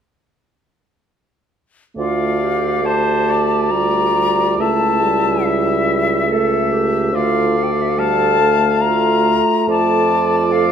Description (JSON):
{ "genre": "classical, slow romantic movement for wind quintet", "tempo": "71 BPM", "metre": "3/4", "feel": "rubato", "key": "D minor", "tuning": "A4 = 440 Hz", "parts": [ { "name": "bright silver concert flute", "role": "melody", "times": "2.0-10.7 s", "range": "E5 to Bb5", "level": "-19 LUFS", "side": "left 5 dB", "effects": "none" }, { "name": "clear oboe", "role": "second line", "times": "2.0-10.7 s", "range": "C5 to F5", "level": "-22 LUFS", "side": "left 1 dB", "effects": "none" }, { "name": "clear clarinet", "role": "accompaniment", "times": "2.0-10.7 s", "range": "E4 to A4", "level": "-22 LUFS", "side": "right 7 dB", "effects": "none" }, { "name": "mellow French horn", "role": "accompaniment", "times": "2.0-10.7 s", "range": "G3 to A3", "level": "-22 LUFS", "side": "right 1 dB", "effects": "none" }, { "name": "dark bassoon", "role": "bass", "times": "2.0-10.7 s", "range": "C#2 to F2", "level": "-20 LUFS", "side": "right 2 dB", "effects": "none" } ], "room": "wet recital hall reverb, RT60 1.7 s", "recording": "none", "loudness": "-14 LUFS", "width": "side -8 dB against mid", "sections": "2.0-10.7 A section", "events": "none", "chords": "2.0 Dm; 4.6 A7/C#; 7.1 Dm; 9.7 Dm/F" }